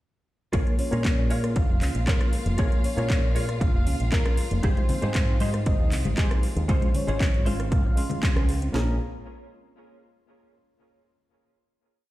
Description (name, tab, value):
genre	nu-disco, nu disco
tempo	117 BPM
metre	4/4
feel	straight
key	Bb dorian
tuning	A4 = 440 Hz
part	reed electric piano	accompaniment	0.5-8.9 s	Ab3 to C6	-34 LUFS	right 1 dB	overdrive, fast tremolo, sidechain pumping, tape echo
part	rich studio violin section	sustained chords	0.5-8.8 s	F4 to F5	-41 LUFS	equal	sidechain pumping
part	soft round pluck	arpeggios	0.5-9.0 s	G3 to Db4	-37 LUFS	equal	none
part	direct-recorded clean electric guitar	riff	0.5-9.0 s	Db4 to Db5	-36 LUFS	right 2 dB	ensemble chorus, tape echo
part	fingered electric bass with an envelope filter	bass	0.5-9.0 s	F1 to Bb2	-26 LUFS	equal	sidechain pumping
part	house drum kit	drums	0.5-8.9 s	kick drum, snare drum	-24 LUFS	equal	overdrive
part	house drum kit	drums	0.5-8.7 s	handclaps, hi-hat, rim click	-34 LUFS	equal	overdrive
part	soft octave-layered synth lead	melody	0.8-9.0 s	Ab4 to Bb5	-35 LUFS	left 1 dB	chorus, tremolo, vintage 12-bit sampler grit, tape echo
part	congas	percussion	4.8-8.2 s	none	-33 LUFS	left 4 dB	none
room	little or no reverb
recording	played on a big sound system in a bare room, large studio reverb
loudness	-22 LUFS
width	side -16 dB against mid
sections	0.5-8.7 drop; 8.7-10.8 final chord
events	drop 0.5-8.7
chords	0.5 Bbm7; 4.6 Abmaj7; 6.7 Dbmaj7; 8.7 Bbm7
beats	| 0.53 1.05 1.56 2.07 | 2.58 3.10 3.61 4.12 | 4.64 5.15 5.66 6.17 | 6.69 7.20 7.71 8.23 | 8.74